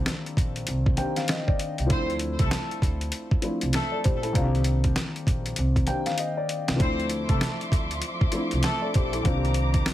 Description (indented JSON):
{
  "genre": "hip hop, boom-bap hip-hop",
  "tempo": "98 BPM",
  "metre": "4/4",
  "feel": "swing 61% on 16ths",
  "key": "unclear",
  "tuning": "A4 = 439 Hz",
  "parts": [
    { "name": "dark baby grand piano", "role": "accompaniment", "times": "0.0-9.9 s", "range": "Eb3 to G5", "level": "-29 LUFS", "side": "left 2 dB", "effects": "cassette tape, high-pass filter, low-pass filter" },
    { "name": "boom bap sampler-style drum kit", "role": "drums", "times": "0.1-9.9 s", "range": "hi-hat, kick drum, snare drum", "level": "-25 LUFS", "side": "equal", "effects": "none" },
    { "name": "upright bass", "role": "bass", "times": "0.4-9.8 s", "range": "Bb1 to D2", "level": "-27 LUFS", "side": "equal", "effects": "none" },
    { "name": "warm horn section", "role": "stabs", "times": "1.9-8.9 s", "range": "A3 to C5", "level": "-33 LUFS", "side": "equal", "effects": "high-pass filter, low-pass filter, digital delay" },
    { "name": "dark studio string section", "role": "sustained chords", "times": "6.8-9.9 s", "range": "Eb3 to D6", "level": "-33 LUFS", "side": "equal", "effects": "high-pass filter, low-pass filter" }
  ],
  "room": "light reverb",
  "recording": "heavily compressed radio sound",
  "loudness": "-23 LUFS",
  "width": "side -13 dB against mid",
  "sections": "0.0-9.9 A section",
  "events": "drum fill 6.2-6.8",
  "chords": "0.0 Cm9; 1.9 Dm9; 4.4 Cm9; 6.8 Dm9; 9.2 Cm9",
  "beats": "0.07 0.68 1.29 | 1.90 2.52 3.13 3.74 | 4.35 4.96 5.58 6.19 | 6.80 7.41 8.03 8.64 | 9.25 9.86"
}